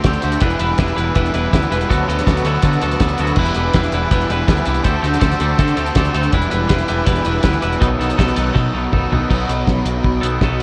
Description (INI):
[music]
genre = indie rock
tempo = 162 BPM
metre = 4/4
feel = straight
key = E minor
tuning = A4 = 440 Hz
[part]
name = string machine, violins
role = sustained chords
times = 0.0-9.3 s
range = B4 to D#6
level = -33 LUFS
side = equal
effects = none
[part]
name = fuzz guitar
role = riff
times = 0.0-10.6 s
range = B2 to F#4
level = -23 LUFS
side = equal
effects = distortion, analog chorus
[part]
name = twangy electric guitar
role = riff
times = 0.0-10.6 s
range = B2 to B4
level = -23 LUFS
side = equal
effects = none
[part]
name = growling picked electric bass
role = bass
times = 0.0-10.6 s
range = E1 to D3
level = -23 LUFS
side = equal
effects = overdrive
[part]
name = cloth-damped thuddy drum kit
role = drums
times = 0.0-10.6 s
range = crash cymbal, hi-hat, kick drum, snare drum, toms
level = -21 LUFS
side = equal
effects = none
[sound]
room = light reverb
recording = worn, warbling old tape, cassette tape, warbly pitch drift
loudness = -17 LUFS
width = mono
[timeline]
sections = 0.0-9.3 A section; 9.3-10.6 B section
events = drum fill 8.6-9.3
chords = 0.4 Em7; 1.9 Bm7/D; 3.4 Em7; 4.9 D7sus4; 6.3 Em7; 7.8 B7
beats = 0.04 | 0.41 0.78 1.15 1.52 | 1.89 2.26 2.63 3.00 | 3.37 3.74 4.11 4.48 | 4.85 5.22 5.59 5.96 | 6.33 6.70 7.07 7.44 | 7.81 8.18 8.55 8.92 | 9.29 9.66 10.03 10.40